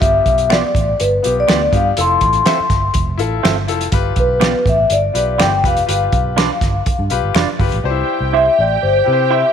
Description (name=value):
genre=uptempo 1960s-style soul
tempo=123 BPM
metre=4/4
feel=straight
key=G mixolydian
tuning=A4 = 440 Hz
part: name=vibraphone with soft mallets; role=melody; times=0.0-9.5 s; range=B4 to C6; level=-15 LUFS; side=left 3 dB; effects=slapback echo
part: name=bright grand piano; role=accompaniment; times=0.0-9.5 s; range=B3 to C5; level=-23 LUFS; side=left 11 dB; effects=none
part: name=vintage muted fingered electric bass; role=bass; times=0.0-9.4 s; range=F1 to C3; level=-20 LUFS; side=right 1 dB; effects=none
part: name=warm soul drum kit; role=drums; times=0.0-7.8 s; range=hi-hat, kick drum, snare drum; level=-18 LUFS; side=right 1 dB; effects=none
part: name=electric guitar through a small old amp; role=stabs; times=0.5-9.4 s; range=B3 to E5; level=-22 LUFS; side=right 12 dB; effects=spring reverb
part: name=finger snap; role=percussion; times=0.5-7.5 s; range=none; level=-28 LUFS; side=left 11 dB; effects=none
part: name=muted studio string section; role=second line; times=7.8-9.5 s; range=G4 to G5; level=-22 LUFS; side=right 13 dB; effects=none
room=light reverb, studio ambience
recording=1960s-style stereo with parts hard left and right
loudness=-13 LUFS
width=side -8 dB against mid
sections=0.0-7.8 A section; 7.8-9.5 B section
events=none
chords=0.0 G7; 2.0 Fmaj7; 3.9 G7; 7.8 C